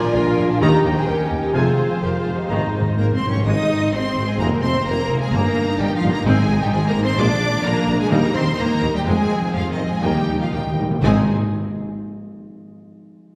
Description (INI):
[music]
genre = cinematic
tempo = 127 BPM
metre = 4/4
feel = uneven beats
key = Ab major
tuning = A4 = 441 Hz
[part]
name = rich symphonic violin section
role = melody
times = 0.0-11.3 s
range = Eb5 to Eb6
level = -31 LUFS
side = equal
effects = none
[part]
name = warm clarinet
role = second line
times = 0.0-3.2 s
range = C4 to F4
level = -29 LUFS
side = equal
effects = none
[part]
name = warm symphonic violin section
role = second line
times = 0.0-11.3 s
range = D4 to Eb5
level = -30 LUFS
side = equal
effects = none
[part]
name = warm symphonic viola section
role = accompaniment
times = 0.0-11.3 s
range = C3 to C5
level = -29 LUFS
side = equal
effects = none
[part]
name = warm French horn section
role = sustained chords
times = 0.0-3.0 s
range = F4 to D5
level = -26 LUFS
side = equal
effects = none
[part]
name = concert harp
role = arpeggios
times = 0.0-11.3 s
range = F2 to C6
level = -29 LUFS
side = equal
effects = none
[part]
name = rich symphonic cello section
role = bass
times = 0.1-11.3 s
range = Eb2 to Eb4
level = -26 LUFS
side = equal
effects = none
[part]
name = warm symphonic double bass section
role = bass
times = 0.1-11.3 s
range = F1 to F2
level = -27 LUFS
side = equal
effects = none
[part]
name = mellow tuba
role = bass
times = 0.2-11.2 s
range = F1 to Eb2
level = -28 LUFS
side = equal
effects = none
[part]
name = clear trombone section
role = sustained chords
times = 0.6-2.7 s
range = Bb2 to F4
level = -36 LUFS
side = equal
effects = none
[part]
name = warm trumpet section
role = stabs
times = 0.6-2.7 s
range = Ab5 to Bb5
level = -32 LUFS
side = equal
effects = none
[part]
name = timpani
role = percussion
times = 2.5-3.4, 6.3-11.3 s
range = Ab2 to Eb3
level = -28 LUFS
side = equal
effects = none
[sound]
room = wet scoring stage reverb, RT60 1.9 s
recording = heard from further back in the room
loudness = -19 LUFS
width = mono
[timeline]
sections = 0.0-3.5 A section; 3.5-11.0 B section; 11.0-13.0 C section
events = timpani fill 2.5-3.5, 10.0-11.0; slowing down 6.3-11.0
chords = 0.0 Bb7; 0.6 Eb; 1.5 Fm; 2.5 Abadd9; 3.5 Ab; 4.4 Fm; 5.3 Eb/G; 6.3 Ab; 7.2 Bb7; 8.1 Eb; 9.1 Fm; 10.0 Eb; 11.0 Ab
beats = 0.15 0.61 1.08 | 1.55 2.02 2.50 2.98 | 3.46 3.93 4.39 4.86 | 5.32 5.79 6.26 6.72 | 7.18 7.65 8.12 8.59 | 9.06 9.54 10.03 10.53 | 11.03